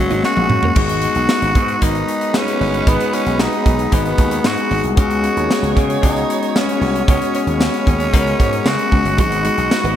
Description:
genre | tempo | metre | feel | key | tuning
1980s-style pop | 114 BPM | 4/4 | straight | G# minor | A4 = 441 Hz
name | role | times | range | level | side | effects
raspy tenor saxophone | melody | 0.0-10.0 s | F#3 to F#4 | -20 LUFS | right 2 dB | ping-pong delay
bell-like tine electric piano | accompaniment | 0.0-10.0 s | G#3 to B4 | -20 LUFS | left 6 dB | none
glassy FM pad | sustained chords | 0.0-10.0 s | F#4 to C#6 | -29 LUFS | equal | ensemble chorus, built-in reverb
gritty slap bass | bass | 0.0-9.9 s | G1 to C#3 | -21 LUFS | right 1 dB | overdrive
direct-recorded clean electric guitar | riff | 0.1-0.7, 9.2-9.9 s | F#3 to D#4 | -27 LUFS | right 4 dB | ensemble chorus
modern studio drum kit | drums | 0.1-10.0 s | crash cymbal, hi-hat, kick drum, snare drum, tambourine, toms | -18 LUFS | right 1 dB | gated reverb
mellow horn section | stabs | 1.8-10.0 s | G#3 to D#5 | -28 LUFS | right 8 dB | none
room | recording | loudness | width
light reverb, studio reverb | bright 1980s-style digital production | -14 LUFS | side -10 dB against mid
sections
0.8-10.0 A section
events
drum fill 0.2-0.8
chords
0.0 F#add9; 0.8 G#m7; 5.0 C#7sus4

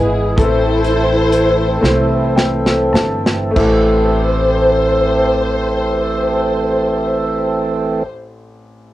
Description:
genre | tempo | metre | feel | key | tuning
slow gospel | 31-46 BPM (dotted quarters) | 6/8 | straight | A minor | A4 = 441 Hz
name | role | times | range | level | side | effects
warm symphonic string section | melody | 0.0-8.1 s | E4 to C5 | -18 LUFS | left 2 dB | cassette tape
warm concert grand piano | accompaniment | 0.0-8.9 s | A1 to A5 | -20 LUFS | left 2 dB | cassette tape
tonewheel organ | sustained chords | 0.0-8.0 s | E3 to A4 | -18 LUFS | right 2 dB | fast rotary speaker, overdrive, cassette tape
upright bass | bass | 0.0-8.0 s | G1 to C2 | -20 LUFS | equal | none
modern studio drum kit | drums | 0.4-3.9 s | crash cymbal, hi-hat, kick drum, snare drum | -18 LUFS | equal | cassette tape
room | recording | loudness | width
wet booth ambience, RT60 0.2 s | home recording on cassette | -12 LUFS | side -14 dB against mid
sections
0.0-3.6 A section; 3.6-7.4 B section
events
slowing down 0.0-3.6; drum fill 1.8-3.6; grand piano fill 1.8-3.6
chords
0.4 Am

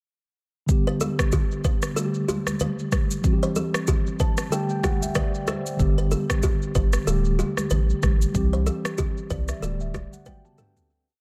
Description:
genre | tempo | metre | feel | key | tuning
afrobeats | 94 BPM | 4/4 | swing 58% on 16ths | unclear | A4 = 440 Hz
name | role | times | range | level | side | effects
mellow tine electric piano | accompaniment | 0.7-11.1 s | D3 to A5 | -29 LUFS | equal | tape echo
deep house drum kit | drums | 0.7-10.9 s | kick drum, rim click, shaker, toms | -27 LUFS | equal | none
buzzing kalimba | riff | 0.9-10.7 s | G4 to C5 | -33 LUFS | equal | tape echo
congas | percussion | 1.0-10.8 s | none | -36 LUFS | equal | none
warm sub bass | bass | 5.8-10.1 s | D1 to C2 | -26 LUFS | equal | none
room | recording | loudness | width
little or no reverb | echo-heavy mix | -24 LUFS | mono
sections
0.7-10.9 verse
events
tine electric piano fill 3.9-5.8, 9.0-10.9; fade-out 8.3-10.9; drum fill 10.3-10.9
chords
0.7 Dsus4; 3.2 C; 4.5 Dsus4; 5.8 G; 7.1 Dsus4; 8.3 C; 9.6 Dsus4

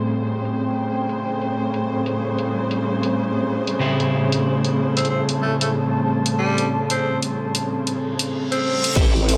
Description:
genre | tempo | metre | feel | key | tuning
glitch hop | 93 BPM | 4/4 | swing 62% on 16ths | unclear | A4 = 440 Hz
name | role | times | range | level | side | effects
muted studio string section | sustained chords | 0.0-9.4 s | A2 to B#4 | -27 LUFS | equal | sidechain pumping, low-pass filter
electric guitar at the edge of break-up | stabs | 0.0-9.1 s | A2 to B#4 | -27 LUFS | equal | subtle chorus, sidechain pumping, low-pass filter, tape echo
warbly tape-like pad | texture | 0.0-9.4 s | B#3 to B#5 | -28 LUFS | equal | chorus, built-in reverb, sidechain pumping
pop drum kit | drums | 0.1-9.4 s | crash cymbal, hi-hat | -28 LUFS | equal | low-pass filter on hats, studio reverb, low-pass filter on snare, low-pass filter on cymbals
raspy tenor saxophone | melody | 5.0-9.0 s | G3 to B#3 | -28 LUFS | equal | tape echo
reverse cymbal | sound effects | 8.2-9.0 s | none | -30 LUFS | equal | none
formant-sweep wobble bass | bass | 9.0-9.4 s | A1 | -21 LUFS | equal | chorus
electronic kick drum | drums | 9.0-9.1 s | none | -20 LUFS | equal | studio reverb
room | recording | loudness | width
moderate lush hall reverb, RT60 2.3 s | none | -22 LUFS | mono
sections
0.0-9.0 A section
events
filter sweep on clean electric guitar 0.0-9.0; filter sweep on string section 0.0-9.0; reverse cymbal 8.2-9.0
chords
0.0 A7#9

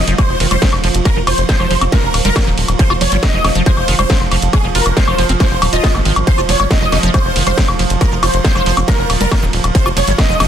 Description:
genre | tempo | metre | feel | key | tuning
psychedelic trance | 138 BPM | 4/4 | straight | F minor | A4 = 444 Hz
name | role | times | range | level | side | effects
dense compressed supersaw | melody | 0.0-10.5 s | Ab4 to Eb5 | -19 LUFS | equal | phaser, sidechain pumping, dub echo
bubbling stepped-filter texture | sustained chords | 0.0-10.5 s | F3 | -22 LUFS | right 6 dB | chorus, built-in reverb, sidechain pumping
tight sequencer bass | bass | 0.0-10.5 s | Eb1 to Ab1 | -17 LUFS | equal | tube saturation
liquid acid bass | riff | 0.1-10.4 s | Eb3 to F4 | -22 LUFS | equal | chorus, auto-pan, sidechain pumping, ping-pong delay
techno drum kit | drums | 0.1-10.5 s | hi-hat, ride cymbal, snare drum, woodblock | -18 LUFS | left 1 dB | none
electronic kick drum | drums | 0.2-10.3 s | none | -15 LUFS | equal | distortion
room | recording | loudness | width
digital ambience | dense, heavily limited modern master | -11 LUFS | side -9 dB against mid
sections
0.0-10.5 A section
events
none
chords
0.0 F5

